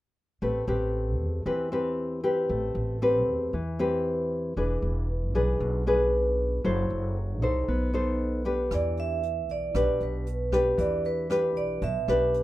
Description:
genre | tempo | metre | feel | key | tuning
bossa nova | 116 BPM | 4/4 | straight | A minor | A4 = 440 Hz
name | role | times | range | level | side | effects
nylon-string guitar | accompaniment | 0.4-12.4 s | B2 to C5 | -26 LUFS | left 1 dB | none
upright bass | bass | 0.4-12.4 s | E1 to E2 | -30 LUFS | equal | none
vibraphone with medium hard mallets | melody | 8.7-12.3 s | B4 to E5 | -30 LUFS | right 5 dB | none
jazz brush drum kit | drums | 8.7-12.4 s | hi-hat, kick drum, rim click | -38 LUFS | equal | none
room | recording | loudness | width
moderate studio ambience, RT60 0.5 s | rough home demo mix | -25 LUFS | side -15 dB against mid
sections
0.4-8.7 A section; 8.7-12.4 B section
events
none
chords
0.4 Am9; 4.6 E7; 6.6 F#m7b5; 7.7 B7b9; 8.7 Em7

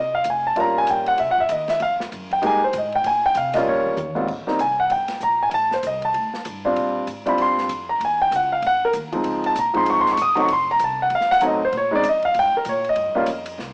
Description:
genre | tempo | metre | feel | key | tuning
jazz, small-group swing and bop | 194 BPM | 4/4 | swing 62% on 8ths | F minor | A4 = 440 Hz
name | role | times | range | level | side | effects
warm grand piano | accompaniment | 0.0-13.6 s | Ab2 to Eb6 | -21 LUFS | equal | cassette tape
upright bass | bass | 0.0-13.7 s | F1 to C3 | -40 LUFS | equal | none
open jazz drum kit | drums | 0.2-13.7 s | crash cymbal, hi-hat, kick drum, ride cymbal, snare drum, toms | -39 LUFS | equal | cassette tape
room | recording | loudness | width
moderate small room reverb, RT60 0.5 s | home recording on cassette, small speaker sound | -21 LUFS | mono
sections
0.0-4.3 A section; 4.3-13.7 A section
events
drum fill 3.7-4.3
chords
0.0 Ab6; 0.6 Gm7b5; 1.2 Ab7b13; 1.8 Fm11; 3.0 Bbm; 3.7 Eb7; 4.3 Abmaj9; 5.5 F69 (rootless); 6.8 Bb69; 8.0 Dbadd9; 8.6 Ab; 9.2 Dbmaj9; 10.5 F7b9; 11.7 Bbm11; 13.0 Gm7b5

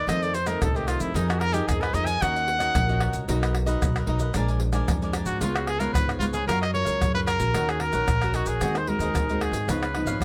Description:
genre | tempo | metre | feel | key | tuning
samba and choro | 112 BPM | 4/4 | straight | F# major from 6.5 s | A4 = 441 Hz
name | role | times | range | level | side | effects
clear trumpet | melody | 0.0-10.2 s | Eb4 to Ab5 | -29 LUFS | equal | plate reverb
cavaquinho | accompaniment | 0.0-10.2 s | D4 to Ab5 | -36 LUFS | equal | none
nylon-string guitar | accompaniment | 0.0-10.2 s | F2 to A#4 | -33 LUFS | equal | none
upright bass | bass | 0.0-10.2 s | G#1 to Ab2 | -30 LUFS | equal | none
tube shaker, surdo, pandeiro and tamborim | percussion | 0.1-10.2 s | none | -31 LUFS | equal | none
room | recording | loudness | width
light reverb | none | -25 LUFS | mono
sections
0.0-6.5 A section; 6.5-10.2 B section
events
trumpet solo 0.0-6.5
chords
0.1 F7; 1.2 Bb7sus4/F; 2.2 Ebm7; 3.3 Bmaj7; 4.4 Bb7; 5.4 Db7; 6.5 F#maj7; 7.6 D#m7; 8.6 G#7/D#; 9.7 C#9

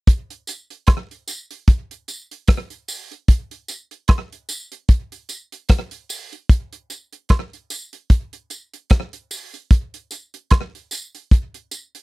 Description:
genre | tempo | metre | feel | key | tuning
reggae | 75 BPM | 4/4 | swing 57% on 16ths | none | none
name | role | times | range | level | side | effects
damped 70s drum kit | drums | 0.1-12.0 s | hi-hat, kick drum, rim click | -14 LUFS | equal | none
tambourine and woodblock | percussion | 0.5-11.9 s | none | -28 LUFS | right 4 dB | none
room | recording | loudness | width
little or no reverb | dry, close 1970s-style studio recording | -18 LUFS | side -24 dB against mid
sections
0.1-12.0 A section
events
none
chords
none

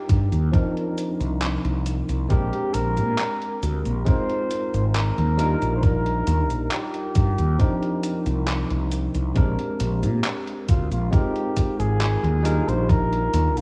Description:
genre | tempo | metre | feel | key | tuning
vaporwave | 68 BPM | 4/4 | straight | unclear | A4 = 440 Hz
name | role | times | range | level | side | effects
breathy flugelhorn | melody | 0.0-13.6 s | F4 to C5 | -31 LUFS | equal | tape echo
barky tine electric piano | accompaniment | 0.0-13.6 s | F3 to Bb4 | -29 LUFS | equal | subtle chorus, vintage 12-bit sampler grit, analog delay
mellow fretless electric bass | bass | 0.1-13.6 s | Ab1 to Bb2 | -25 LUFS | equal | tube saturation
detuned 8-bit digital drum machine | drums | 0.1-13.6 s | cabasa, handclaps, hi-hat | -34 LUFS | equal | overdrive
electronic kick drum | drums | 0.1-13.1 s | none | -22 LUFS | equal | overdrive
room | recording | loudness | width
light reverb | worn, warbling old tape, cassette tape, warbly pitch drift, small room ambience | -23 LUFS | mono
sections
0.0-9.4 A section; 9.4-13.6 B section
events
none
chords
0.0 Ebmaj9; 0.5 Cm11; 2.3 Bb13; 4.1 Ab69; 5.4 Ebmaj9; 7.6 Cm11; 9.4 Bb13; 11.1 Ab69; 12.4 Ebmaj9

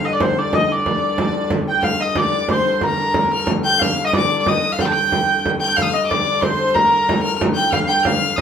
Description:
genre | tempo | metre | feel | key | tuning
medieval dance | 183 BPM | 3/4 | straight | G minor | A4 = 440 Hz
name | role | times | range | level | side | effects
rich hurdy-gurdy | melody | 0.0-8.4 s | Bb4 to G5 | -19 LUFS | equal | none
dark hurdy-gurdy | drone | 0.0-8.4 s | G2 to D3 | -26 LUFS | equal | none
frame drum | percussion | 0.0-8.4 s | none | -21 LUFS | right 2 dB | none
rich fiddle | second line | 1.8-8.4 s | A5 to G6 | -21 LUFS | left 4 dB | none
room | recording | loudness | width
wet studio ambience, RT60 0.5 s | band playing live in one room | -15 LUFS | side -8 dB against mid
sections
0.0-5.8 A section; 5.8-8.4 A section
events
none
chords
none

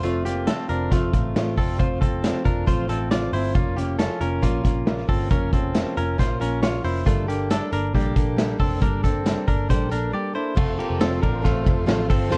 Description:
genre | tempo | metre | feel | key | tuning
jangly indie pop | 137 BPM | 4/4 | straight | F major | A4 = 440 Hz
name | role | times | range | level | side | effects
fingerpicked plugged-in steel-string acoustic guitar | accompaniment | 0.0-12.4 s | F3 to A4 | -29 LUFS | equal | none
direct-recorded clean electric guitar | arpeggios | 0.0-12.4 s | A3 to D5 | -31 LUFS | equal | tape echo
vintage muted picked electric bass | bass | 0.0-12.4 s | F1 to Bb1 | -29 LUFS | equal | none
vintage drum kit | drums | 0.0-12.4 s | crash cymbal, hi-hat, kick drum, ride cymbal, snare drum | -25 LUFS | equal | none
string machine, violas | sustained chords | 10.6-12.4 s | A4 to C6 | -38 LUFS | equal | none
room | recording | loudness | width
light reverb | worn, warbling old tape, cassette tape, warbly pitch drift | -22 LUFS | mono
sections
0.0-10.6 A section; 10.6-12.4 B section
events
break 10.1-10.6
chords
0.0 F; 3.6 Bbm/F; 7.1 F

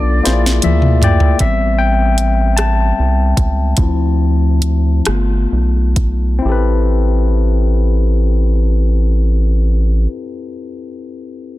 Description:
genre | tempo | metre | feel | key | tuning
slow six-eight R&B | 42-52 BPM (dotted quarters) | 6/8 | straight | A minor | A4 = 441 Hz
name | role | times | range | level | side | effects
lightly driven lead guitar | melody | 0.0-0.6 s | D5 | -27 LUFS | right 1 dB | ping-pong delay
barky tine electric piano | accompaniment | 0.0-11.6 s | F3 to A5 | -18 LUFS | left 5 dB | none
rubbery square bass | bass | 0.0-10.1 s | G1 to D2 | -13 LUFS | right 1 dB | none
smooth R&B drum kit | drums | 0.3-6.2 s | hi-hat, kick drum, rim click, snare drum, toms | -16 LUFS | right 1 dB | soft clipping on snare
room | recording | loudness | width
digital ambience | dense, heavily limited modern master | -12 LUFS | side -16 dB against mid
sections
0.0-1.4 A section; 1.4-6.4 B section; 6.4-9.3 C section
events
drum fill 0.2-1.4; tine electric piano fill 0.2-1.4; slowing down 1.4-6.4; tine electric piano solo 1.4-6.4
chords
0.2 Bb7#11; 1.4 Am7; 3.8 Dm7; 5.0 G7; 6.4 Am7

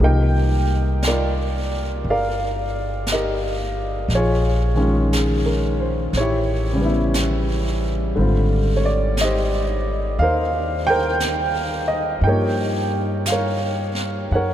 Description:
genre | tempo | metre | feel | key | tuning
jazz ballad | 59 BPM | 4/4 | swing 66% on 8ths | C minor | A4 = 440 Hz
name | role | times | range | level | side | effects
warm upright piano | accompaniment | 0.0-14.5 s | C#3 to G5 | -21 LUFS | equal | none
upright bass | bass | 0.0-14.5 s | G1 to G2 | -22 LUFS | equal | none
jazz brush drum kit | drums | 1.0-14.5 s | brushed snare drum, hi-hat, snare drum | -31 LUFS | right 1 dB | none
room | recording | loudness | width
moderate cathedral reverb, RT60 6.5 s | in a vast, echoing space | -18 LUFS | side -11 dB against mid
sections
0.0-14.5 A section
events
none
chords
0.0 Cm11; 4.1 Bbm7; 6.1 A7; 8.2 Abmaj9; 12.2 Gm7b5

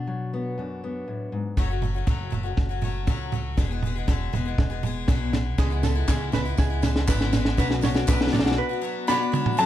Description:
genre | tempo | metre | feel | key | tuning
indie folk with a building arrangement | 120 BPM | 4/4 | straight | unclear | A4 = 440 Hz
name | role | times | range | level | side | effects
fingerpicked steel-string acoustic guitar | accompaniment | 0.0-1.6 s | F#2 to D4 | -29 LUFS | left 2 dB | none
picked steel-string acoustic guitar | accompaniment | 1.6-9.7 s | E2 to G#4 | -30 LUFS | left 7 dB | none
upright bass | bass | 1.6-8.6 s | E1 to C#2 | -27 LUFS | equal | none
compact cocktail drum kit | drums | 1.6-9.6 s | kick drum, snare drum, toms | -24 LUFS | right 1 dB | none
ukulele | arpeggios | 5.6-9.6 s | G#4 to D5 | -32 LUFS | right 8 dB | digital delay
tambourine | percussion | 5.6-8.5 s | none | -43 LUFS | right 10 dB | none
group handclap | percussion | 6.1-8.2 s | none | -38 LUFS | left 4 dB | none
warm upright piano | melody | 9.1-9.7 s | A5 to B5 | -23 LUFS | right 1 dB | none
mellow tonewheel organ | sustained chords | 9.6-9.7 s | F#3 to A4 | -25 LUFS | left 1 dB | slow rotary speaker, chorus vibrato
room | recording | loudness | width
light reverb | dark, warm production | -22 LUFS | side -12 dB against mid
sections
0.0-1.6 A section; 1.6-9.6 B section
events
build-up 1.6-9.6; drum fill 1.6-8.6, 9.1-9.6; break 8.6-9.6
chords
0.0 Bm; 1.6 F#m; 3.6 E; 5.6 C#m7; 7.6 Bm

